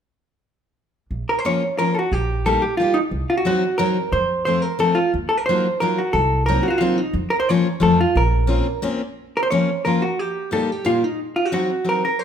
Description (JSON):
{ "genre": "musette waltz", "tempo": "179 BPM", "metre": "3/4", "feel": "straight", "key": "Bb harmonic minor", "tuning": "A4 = 441 Hz", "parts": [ { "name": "upright bass", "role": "bass", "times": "1.1-8.6 s", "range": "Bb1 to F2", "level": "-22 LUFS", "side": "right 1 dB", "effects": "none" }, { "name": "vintage hollow-body jazz guitar", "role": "melody", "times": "1.3-12.2 s", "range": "Eb4 to Db5", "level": "-20 LUFS", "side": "right 1 dB", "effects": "none" }, { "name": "picked steel-string acoustic guitar", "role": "accompaniment", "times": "1.4-12.0 s", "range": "Bb2 to G4", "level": "-22 LUFS", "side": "left 4 dB", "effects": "none" } ], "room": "light reverb", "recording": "minimal, uncompressed stereo recording", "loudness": "-18 LUFS", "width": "side -8 dB against mid", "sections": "1.1-9.2 A section; 9.2-12.2 A section", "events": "none", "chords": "1.1 Bbm; 2.1 Eb/Bb; 3.1 Cdim; 4.1 F; 5.1 Ebmadd9; 6.2 Cm7b5; 7.2 Bbm/F; 7.8 F; 8.2 Bbmadd9; 9.2 Bbm; 10.2 Eb; 11.2 Cdim", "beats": "| 1.10 1.44 1.78 | 2.12 2.46 2.79 | 3.12 3.46 3.79 | 4.13 4.47 4.81 | 5.15 5.48 5.82 | 6.15 6.49 6.82 | 7.15 7.49 7.82 | 8.16 8.49 8.83 | 9.17 9.51 9.85 | 10.19 10.52 10.86 | 11.19 11.52 11.86 | 12.19" }